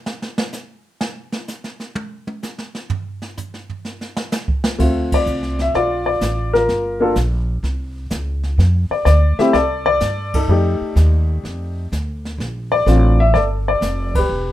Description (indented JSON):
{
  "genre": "jazz piano trio",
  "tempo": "126 BPM",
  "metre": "4/4",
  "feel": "swing 69% on 8ths",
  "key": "D minor",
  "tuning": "A4 = 442 Hz",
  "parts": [
    { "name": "jazz brush drum kit", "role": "drums", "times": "0.1-14.5 s", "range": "brushed snare drum, crash cymbal, hi-hat, kick drum, snare drum, toms", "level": "-24 LUFS", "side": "right 2 dB", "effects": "none" },
    { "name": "warm baby grand piano", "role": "melody", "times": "4.8-14.5 s", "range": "A3 to E5", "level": "-17 LUFS", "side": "left 2 dB", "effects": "none" },
    { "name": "upright bass", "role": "bass", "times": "4.8-14.5 s", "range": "E1 to G2", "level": "-18 LUFS", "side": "equal", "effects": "none" }
  ],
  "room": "light reverb",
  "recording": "minimal, uncompressed stereo recording",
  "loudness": "-16 LUFS",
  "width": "side -13 dB against mid",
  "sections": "0.0-4.8 A section; 4.8-14.5 B section",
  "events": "drum solo 0.0-4.8; band accent 5.0, 10.2, 14.1",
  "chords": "0.0 N.C.; 4.8 Dm9; 6.7 Gm7; 7.6 N.C.; 8.6 Fadd9; 10.5 F13; 12.4 Bbmaj7"
}